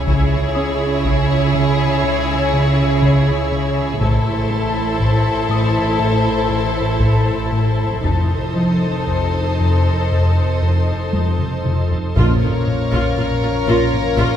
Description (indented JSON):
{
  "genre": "cinematic, suspense film score",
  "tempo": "60 BPM",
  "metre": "4/4",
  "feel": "straight",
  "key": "unclear",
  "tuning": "A4 = 441 Hz",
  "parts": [
    { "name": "warm studio violin section", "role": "melody", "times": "0.0-14.4 s", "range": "C5 to C#5", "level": "-26 LUFS", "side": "left 5 dB", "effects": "none" },
    { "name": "warm studio violin section", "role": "second line", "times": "0.0-14.4 s", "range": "G#4 to Bb4", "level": "-24 LUFS", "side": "left 4 dB", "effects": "none" },
    { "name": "rich studio viola section", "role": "accompaniment", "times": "0.0-14.4 s", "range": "Eb4 to F4", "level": "-26 LUFS", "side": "right 2 dB", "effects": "none" },
    { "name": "soft additive organ-like pad", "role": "sustained chords", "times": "0.0-14.4 s", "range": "E4 to F5", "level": "-27 LUFS", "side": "right 1 dB", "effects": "ensemble chorus, built-in reverb" },
    { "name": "rich studio double bass section", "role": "bass", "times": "0.0-14.3 s", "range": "F1 to C#2", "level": "-26 LUFS", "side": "right 3 dB", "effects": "none" },
    { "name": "warm studio cello section", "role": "bass", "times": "0.0-14.2 s", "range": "F2 to C#3", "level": "-23 LUFS", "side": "right 4 dB", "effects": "none" },
    { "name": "deep rumbling drone", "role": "drone", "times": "0.0-14.4 s", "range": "A1 to F2", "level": "-26 LUFS", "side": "right 1 dB", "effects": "none" },
    { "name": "concert harp", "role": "texture", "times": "0.0-14.4 s", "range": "D#5 to Bb6", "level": "-35 LUFS", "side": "left 6 dB", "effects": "none" },
    { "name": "round analog bass", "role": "riff", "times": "0.1-14.4 s", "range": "F2 to C#4", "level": "-19 LUFS", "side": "left 1 dB", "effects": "none" },
    { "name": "taiko ensemble", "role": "drums", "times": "0.1-14.4 s", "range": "none", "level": "-25 LUFS", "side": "equal", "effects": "none" },
    { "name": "dark French horn section", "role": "sustained chords", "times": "12.2-14.4 s", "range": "F3 to Db4", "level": "-26 LUFS", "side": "left 4 dB", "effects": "none" },
    { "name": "timpani", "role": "percussion", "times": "12.2-13.6 s", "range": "Bb2", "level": "-24 LUFS", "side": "equal", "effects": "none" }
  ],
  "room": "wet scoring stage reverb, RT60 2.0 s",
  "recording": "minimal, uncompressed stereo recording",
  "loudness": "-15 LUFS",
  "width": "side -9 dB against mid",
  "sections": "0.0-12.2 A section; 12.2-14.4 B section",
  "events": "drum fill 11.1-12.2",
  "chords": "0.0 C#m; 4.0 Am; 8.0 F7; 12.2 Bbm",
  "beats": "| 0.07 1.05 2.04 3.03 | 4.01 5.00 5.99 7.00 | 8.04 9.08 10.11 11.13 | 12.17 13.18 14.17"
}